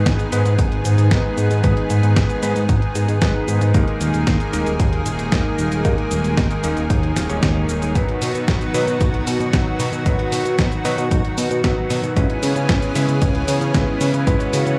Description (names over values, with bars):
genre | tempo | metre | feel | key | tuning
italo disco | 114 BPM | 4/4 | straight | G# minor | A4 = 440 Hz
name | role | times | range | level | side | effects
lush unison pad | sustained chords | 0.0-14.8 s | D#3 to G#4 | -26 LUFS | equal | chorus
clear electric grand piano | stabs | 0.0-14.8 s | F#3 to C#5 | -29 LUFS | equal | analog delay
fat analog bass | bass | 0.0-14.8 s | D#1 to C#3 | -23 LUFS | equal | none
clean 12-bit digital drum machine | drums | 0.1-14.8 s | cabasa, hi-hat, snare drum | -27 LUFS | equal | studio reverb
electronic kick drum | drums | 0.1-14.4 s | none | -22 LUFS | equal | studio reverb
room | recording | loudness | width
little or no reverb | dry, gritty hardware recording, cassette tape, studio ambience | -19 LUFS | mono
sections
0.0-14.8 A section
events
none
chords
0.0 G#m; 3.7 D#sus4; 8.0 B; 12.2 C#m7